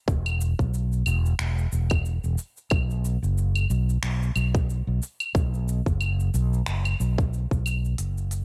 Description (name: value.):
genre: organic downtempo.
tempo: 91 BPM.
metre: 4/4.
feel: swing 56% on 16ths.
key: unclear.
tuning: A4 = 440 Hz.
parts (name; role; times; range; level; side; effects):
fretless electric bass; bass; 0.1-8.4 s; E1 to B1; -26 LUFS; equal; analog chorus, sidechain pumping.
electronic kick drum; drums; 0.1-7.6 s; none; -27 LUFS; equal; none.
organic electronic drum kit; drums; 0.1-8.4 s; claves, finger snaps, hi-hat, shaker; -34 LUFS; equal; none.
room: little or no reverb.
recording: none.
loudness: -25 LUFS.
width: mono.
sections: 0.0-8.0 A section.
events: none.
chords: none.